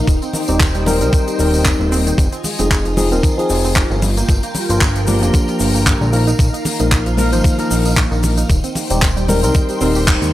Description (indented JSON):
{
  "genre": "nu-disco, nu disco",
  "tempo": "114 BPM",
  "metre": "4/4",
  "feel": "swing 56% on 16ths",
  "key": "unclear",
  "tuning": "A4 = 439 Hz",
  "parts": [
    { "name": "tine electric piano", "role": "accompaniment", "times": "0.0-10.3 s", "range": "F3 to C5", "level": "-19 LUFS", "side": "left 1 dB", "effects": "overdrive, phaser, tape echo" },
    { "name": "string machine, full ensemble", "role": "sustained chords", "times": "0.0-10.3 s", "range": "Eb4 to Ab5", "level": "-24 LUFS", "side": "left 1 dB", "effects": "ensemble chorus, sidechain pumping" },
    { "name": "analog pluck", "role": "arpeggios", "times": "0.0-10.3 s", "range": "D3 to G4", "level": "-26 LUFS", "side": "right 4 dB", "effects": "chorus, sidechain pumping, tape echo" },
    { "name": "fat analog bass", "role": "bass", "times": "0.0-10.3 s", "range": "Eb1 to Eb2", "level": "-18 LUFS", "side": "equal", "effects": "none" },
    { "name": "electronic kick drum", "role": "drums", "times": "0.1-10.2 s", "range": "none", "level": "-15 LUFS", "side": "equal", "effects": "overdrive, small room ambience" },
    { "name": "tight funk drum kit", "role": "drums", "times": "0.1-10.3 s", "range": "handclaps, hi-hat, shaker", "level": "-21 LUFS", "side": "left 1 dB", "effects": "small room ambience" },
    { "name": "tambourine and congas", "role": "percussion", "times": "0.1-10.3 s", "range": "none", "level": "-26 LUFS", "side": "equal", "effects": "none" }
  ],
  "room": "small room ambience",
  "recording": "dry, gritty hardware recording",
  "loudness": "-13 LUFS",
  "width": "side -14 dB against mid",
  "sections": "0.0-10.3 A section",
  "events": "band accent 10.1",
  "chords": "0.1 Eb6; 2.2 Fm7; 4.0 Gm7; 6.1 Bbsus4; 8.5 Eb6"
}